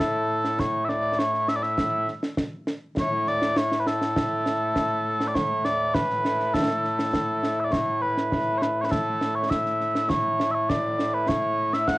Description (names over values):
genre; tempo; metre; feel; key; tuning
scottish traditional, Scottish pipe music; 101 BPM; 4/4; straight; A major; A4 = 438 Hz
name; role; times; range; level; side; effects
mellow small bagpipes; melody; 0.0-12.0 s; A2 to F#5; -23 LUFS; equal; cassette tape, plate reverb
concert snare drum and concert bass drum; drums; 0.0-12.0 s; none; -28 LUFS; equal; cassette tape
room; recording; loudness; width
moderate studio ambience, RT60 0.5 s; home recording on cassette, nothing above 10.9 kHz; -22 LUFS; side -20 dB against mid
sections
0.0-7.7 A section; 7.7-12.0 B section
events
none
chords
none